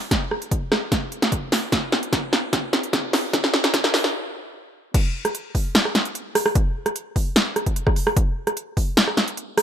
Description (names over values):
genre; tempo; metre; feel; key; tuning
dubstep; 149 BPM; 4/4; half-time; none; none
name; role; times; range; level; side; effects
big-room dance drum kit; drums; 0.1-9.6 s; crash cymbal, hi-hat, rim click, snare drum; -20 LUFS; equal; none
electronic kick drum; drums; 0.1-8.9 s; none; -22 LUFS; equal; none
room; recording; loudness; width
light reverb; high-pass filter; -20 LUFS; side -9 dB against mid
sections
0.0-4.9 A section; 4.9-9.6 B section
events
build-up 0.0-4.9; drum fill 0.0-4.1; filter sweep 0.0-4.9; stop 4.1-4.9; drop 4.9-9.6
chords
none